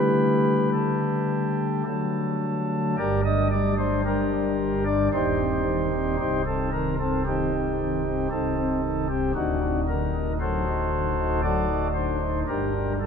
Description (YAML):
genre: classical, chorale-style piece for pipe organ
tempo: 57 BPM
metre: 3/4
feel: uneven beats, rubato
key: G minor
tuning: A4 = 444 Hz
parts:
  - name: pipe organ, flutes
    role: solo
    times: 0.0-13.1 s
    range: C1 to Eb5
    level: -22 LUFS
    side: equal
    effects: none
room: wet cathedral reverb, RT60 5.6 s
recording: none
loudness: -22 LUFS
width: side -6 dB against mid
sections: 0.0-3.0 A section; 3.0-13.1 B section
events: none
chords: 0.0 Dsus4; 1.9 D; 3.0 Gm; 5.1 Cm/Eb; 6.2 Cm; 8.3 Adim/C; 9.4 D7b9; 12.5 G5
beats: 0.73 1.87 | 2.98 4.05 5.13 | 6.20 7.26 8.31 | 9.36 10.41 11.44 | 12.48